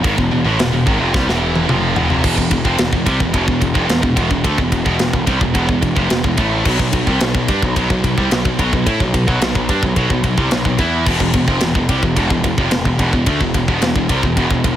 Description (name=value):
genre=heavy metal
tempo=109 BPM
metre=4/4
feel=straight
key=unclear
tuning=A4 = 440 Hz
part: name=heavy high-gain guitar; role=riff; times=0.0-14.8 s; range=E2 to E4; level=-17 LUFS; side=equal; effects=distortion
part: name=fuzz picked electric bass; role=bass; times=0.0-14.8 s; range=E1 to A2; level=-19 LUFS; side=equal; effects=overdrive
part: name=tight metal drum kit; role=drums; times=0.0-14.8 s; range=crash cymbal, kick drum, ride cymbal, snare drum, toms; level=-18 LUFS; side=equal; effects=none
room=small room ambience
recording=none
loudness=-14 LUFS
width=side -11 dB against mid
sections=0.0-2.2 A section; 2.2-14.8 B section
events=drum fill 1.1-2.2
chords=0.0 E; 2.2 E5; 6.7 B5; 11.1 E5